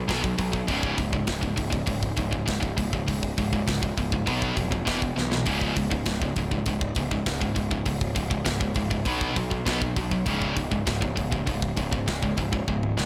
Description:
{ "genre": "heavy metal", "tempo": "100 BPM", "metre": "4/4", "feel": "straight", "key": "C# minor", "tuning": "A4 = 440 Hz", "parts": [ { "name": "sludgy distorted guitar", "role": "riff", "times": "0.0-13.1 s", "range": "C#2 to B3", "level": "-34 LUFS", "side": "equal", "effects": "overdrive" }, { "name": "tight distorted guitar", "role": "riff", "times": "0.0-13.1 s", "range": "C#2 to B3", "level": "-32 LUFS", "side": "equal", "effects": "distortion" }, { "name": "fuzz picked electric bass", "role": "bass", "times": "0.0-13.1 s", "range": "C#1 to B1", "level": "-33 LUFS", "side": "equal", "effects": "overdrive" }, { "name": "tight metal drum kit", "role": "drums", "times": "0.1-13.1 s", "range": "hi-hat, kick drum, snare drum, toms", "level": "-32 LUFS", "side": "equal", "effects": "none" } ], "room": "little or no reverb", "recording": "none", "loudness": "-26 LUFS", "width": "mono", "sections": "0.0-13.1 A section", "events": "drum fill 5.2, 12.7-13.1", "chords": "0.0 B5; 0.7 C#5; 4.3 B5; 4.9 E5; 5.5 C#5; 9.1 B5; 10.3 C#5" }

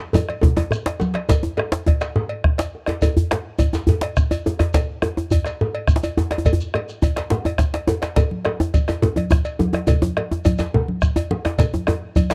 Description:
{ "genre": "west african traditional, West African drum ensemble", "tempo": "140 BPM (dotted quarters)", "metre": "12/8", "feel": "straight", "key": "none", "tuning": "none", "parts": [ { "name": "congas", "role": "percussion", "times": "0.1-1.2, 8.2-12.3 s", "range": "none", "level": "-26 LUFS", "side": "equal", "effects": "none" }, { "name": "djembe", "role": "percussion", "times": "0.1-12.3 s", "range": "none", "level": "-26 LUFS", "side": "equal", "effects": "none" }, { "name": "djembe", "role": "percussion", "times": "0.1-12.3 s", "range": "none", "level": "-24 LUFS", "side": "equal", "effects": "none" }, { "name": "shekere", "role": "percussion", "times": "0.1-12.3 s", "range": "none", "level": "-30 LUFS", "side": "equal", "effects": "none" }, { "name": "cowbell", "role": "percussion", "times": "0.2-12.3 s", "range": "none", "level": "-31 LUFS", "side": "equal", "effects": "none" }, { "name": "bombo", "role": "percussion", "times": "0.3-12.3 s", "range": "none", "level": "-22 LUFS", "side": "equal", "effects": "none" } ], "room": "small room ambience", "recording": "dry, close 1970s-style studio recording", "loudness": "-20 LUFS", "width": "mono", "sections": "0.0-1.3 A section; 1.3-12.3 A section", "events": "drum fill 0.0-1.3", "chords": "none" }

